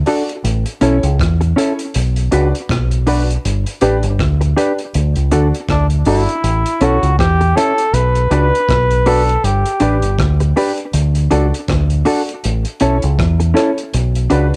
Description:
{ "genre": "roots reggae", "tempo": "80 BPM", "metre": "4/4", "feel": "swing 57% on 16ths", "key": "unclear", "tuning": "A4 = 440 Hz", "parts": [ { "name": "deep dub fingered electric bass", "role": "bass", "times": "0.0-14.5 s", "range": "G1 to E2", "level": "-17 LUFS", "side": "equal", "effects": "none" }, { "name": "mellow electric guitar", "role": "accompaniment", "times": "0.1-14.5 s", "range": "C#4 to B4", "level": "-20 LUFS", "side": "equal", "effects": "subtle chorus, cassette tape, tape echo" }, { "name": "clear concert grand piano", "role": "stabs", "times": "0.1-14.5 s", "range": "C#4 to D5", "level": "-23 LUFS", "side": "equal", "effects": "cassette tape" }, { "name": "vintage drum kit", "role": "drums", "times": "0.1-14.6 s", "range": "hi-hat, kick drum, rim click", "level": "-25 LUFS", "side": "equal", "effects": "cassette tape" }, { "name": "warm flugelhorn", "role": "melody", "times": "5.7-10.2 s", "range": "D4 to B4", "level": "-19 LUFS", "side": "equal", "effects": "cassette tape, tape echo" } ], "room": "light reverb", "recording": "home recording on cassette", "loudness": "-15 LUFS", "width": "mono", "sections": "0.0-14.6 A section", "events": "none", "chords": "0.4 A; 1.9 Bm; 3.4 G; 4.9 D; 6.4 A; 7.9 Bm; 9.4 G; 10.9 D; 12.4 A; 13.9 Bm", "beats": "| 0.44 1.19 1.94 2.69 | 3.44 4.19 4.94 5.69 | 6.44 7.19 7.94 8.69 | 9.44 10.19 10.94 11.69 | 12.44 13.19 13.94" }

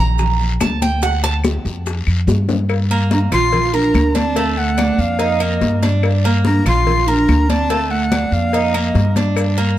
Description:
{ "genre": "latin, Cuban son and guajira", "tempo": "144 BPM", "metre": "4/4", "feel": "straight", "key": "G minor", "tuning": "A4 = 440 Hz", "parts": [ { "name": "Cuban tres", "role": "arpeggios", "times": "0.0-9.8 s", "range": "A3 to Bb5", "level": "-21 LUFS", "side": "right 4 dB", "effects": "none" }, { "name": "upright bass", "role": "bass", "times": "0.0-9.8 s", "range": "Bb1 to G2", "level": "-18 LUFS", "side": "equal", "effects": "none" }, { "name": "bongos and cowbell", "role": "percussion", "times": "0.2-9.6 s", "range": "none", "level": "-26 LUFS", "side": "left 7 dB", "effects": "none" }, { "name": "congas", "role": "percussion", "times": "0.2-9.8 s", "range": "none", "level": "-23 LUFS", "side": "left 2 dB", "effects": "none" }, { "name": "guiro", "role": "percussion", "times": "0.2-9.8 s", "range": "none", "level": "-33 LUFS", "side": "left 6 dB", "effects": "none" }, { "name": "maracas", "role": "percussion", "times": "0.2-2.7, 9.4-9.8 s", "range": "none", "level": "-35 LUFS", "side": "right 4 dB", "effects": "none" }, { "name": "claves", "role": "percussion", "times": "0.6-9.6 s", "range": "none", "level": "-29 LUFS", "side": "left 6 dB", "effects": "none" }, { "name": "breathy bright jazz flute", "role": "melody", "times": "3.1-9.2 s", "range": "Eb5 to C6", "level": "-21 LUFS", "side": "left 3 dB", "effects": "none" }, { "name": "bright bass ocarina", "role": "second line", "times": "3.1-9.2 s", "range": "A3 to F4", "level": "-20 LUFS", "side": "right 4 dB", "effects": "none" } ], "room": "light reverb", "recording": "dark, warm production", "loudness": "-14 LUFS", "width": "side -13 dB against mid", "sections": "0.0-2.7 A section; 2.7-9.8 B section", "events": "Cuban tres solo 0.0-2.7; drum fill 2.3-2.7", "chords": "0.2 Bb; 1.0 Dm; 1.9 Fsus2; 2.7 Gm7; 3.5 Bb; 4.4 D; 5.2 F7sus4; 6.0 Gm7; 6.9 Bb; 7.7 D; 8.5 F7sus4", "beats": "0.19 0.61 | 1.02 1.44 1.86 2.28 | 2.70 3.11 3.53 3.95 | 4.37 4.78 5.20 5.62 | 6.03 6.45 6.87 7.28 | 7.70 8.12 8.53 8.95 | 9.37 9.78" }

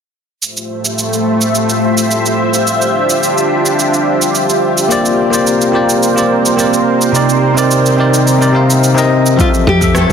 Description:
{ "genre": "sunset chillout", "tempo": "107 BPM", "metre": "4/4", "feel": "straight", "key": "F major", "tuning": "A4 = 440 Hz", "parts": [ { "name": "lush unison pad", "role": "sustained chords", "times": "0.4-10.1 s", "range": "F3 to E6", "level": "-13 LUFS", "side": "equal", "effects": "chorus, phaser, vintage 12-bit sampler grit" }, { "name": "electronic cabasa and rim click", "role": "drums", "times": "0.4-10.1 s", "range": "none", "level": "-18 LUFS", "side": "right 3 dB", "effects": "none" }, { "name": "bell-like tine electric piano", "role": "accompaniment", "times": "4.9-10.1 s", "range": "C3 to F5", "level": "-11 LUFS", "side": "moving between left 5 dB and right 4 dB", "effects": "auto-pan, tape echo" }, { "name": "nylon-string guitar", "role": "melody", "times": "9.4-10.1 s", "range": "F4 to A4", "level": "-15 LUFS", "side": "left 1 dB", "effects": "none" }, { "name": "electronic kick drum", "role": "drums", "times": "9.4-9.9 s", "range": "none", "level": "-15 LUFS", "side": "equal", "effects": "overdrive" }, { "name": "woody fretless electric bass", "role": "bass", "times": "9.7-10.1 s", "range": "F2", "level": "-13 LUFS", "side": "equal", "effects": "none" }, { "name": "congas", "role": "percussion", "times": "9.7-10.1 s", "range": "none", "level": "-20 LUFS", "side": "right 3 dB", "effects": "none" } ], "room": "wet plate reverb, RT60 2.2 s", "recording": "dense, heavily limited modern master", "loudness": "-10 LUFS", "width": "side -7 dB against mid", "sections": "0.4-9.4 A section", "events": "none", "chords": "0.4 Fmaj9; 2.7 Dm11; 4.9 Bb69; 7.1 Cm9; 9.4 Fmaj9", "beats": "| 0.42 0.98 1.54 2.10 | 2.66 3.22 3.78 4.34 | 4.91 5.47 6.03 6.59 | 7.15 7.71 8.27 8.83 | 9.39 9.95" }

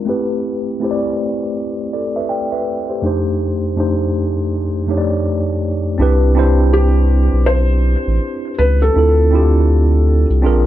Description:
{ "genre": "hip hop", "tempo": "81 BPM", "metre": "4/4", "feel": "swing 62% on 16ths", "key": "C major", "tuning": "A4 = 442 Hz", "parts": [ { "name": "mellow tine electric piano", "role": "accompaniment", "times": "0.0-10.7 s", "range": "F2 to G5", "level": "-17 LUFS", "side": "equal", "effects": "medium stereo tremolo, cassette tape, low-pass filter" }, { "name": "saturated sub bass", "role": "bass", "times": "6.0-10.7 s", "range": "A1 to D2", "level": "-12 LUFS", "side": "equal", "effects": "none" }, { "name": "felt-muted upright piano", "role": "melody", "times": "6.7-10.3 s", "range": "G4 to C5", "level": "-20 LUFS", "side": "left 1 dB", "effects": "low-pass filter, tape echo" } ], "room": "moderate studio reverb, RT60 0.5 s", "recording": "dark, warm production, low-pass filter", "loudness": "-14 LUFS", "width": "side -13 dB against mid", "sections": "0.0-6.0 A section; 6.0-10.7 B section", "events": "filter sweep 0.0-6.0", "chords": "0.1 Am9; 3.0 F13; 6.0 Cmaj9; 9.0 Dm7", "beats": "| 0.07 0.81 1.55 2.29 | 3.03 3.77 4.51 5.25 | 5.99 6.73 7.47 8.21 | 8.96 9.70 10.44" }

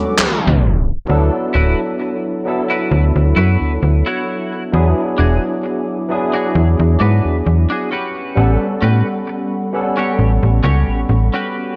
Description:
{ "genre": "vaporwave", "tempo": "66 BPM", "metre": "4/4", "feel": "swing 54% on 16ths", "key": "D major", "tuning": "A4 = 440 Hz", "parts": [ { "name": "barky tine electric piano", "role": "accompaniment", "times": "0.0-11.8 s", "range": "F#3 to F#5", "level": "-22 LUFS", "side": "equal", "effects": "overdrive, ensemble chorus, tape echo" }, { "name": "warbly tape-like pad", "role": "sustained chords", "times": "0.0-11.8 s", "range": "G3 to D6", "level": "-32 LUFS", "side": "equal", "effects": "chorus, built-in reverb" }, { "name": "gated 80s digital drum machine", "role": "drums", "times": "0.2-1.1 s", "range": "congas, handclaps, hi-hat", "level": "-20 LUFS", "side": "equal", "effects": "gated reverb, low-pass filter on hats, low-pass filter on perc, low-pass filter on snare, low-pass filter on room" }, { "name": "slap-like FM bass", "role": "bass", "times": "0.4-11.3 s", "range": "D1 to B2", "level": "-15 LUFS", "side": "equal", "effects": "none" }, { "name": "clean electric guitar", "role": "riff", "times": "1.5-11.8 s", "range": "C#4 to C#5", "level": "-25 LUFS", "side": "equal", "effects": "analog chorus, low-pass filter, tape echo" } ], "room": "moderate concert hall reverb, RT60 2.2 s", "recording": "cassette tape, tape stop", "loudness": "-16 LUFS", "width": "mono", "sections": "0.0-1.1 A section; 1.1-11.8 B section", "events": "band accent 0.2-0.6; tape stop 0.2-1.1", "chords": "0.0 Bm9; 1.1 D69; 4.7 E9; 7.9 A13", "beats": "0.19 | 1.10 2.01 2.92 3.83 | 4.73 5.64 6.55 7.46 | 8.37 9.28 10.19 11.10" }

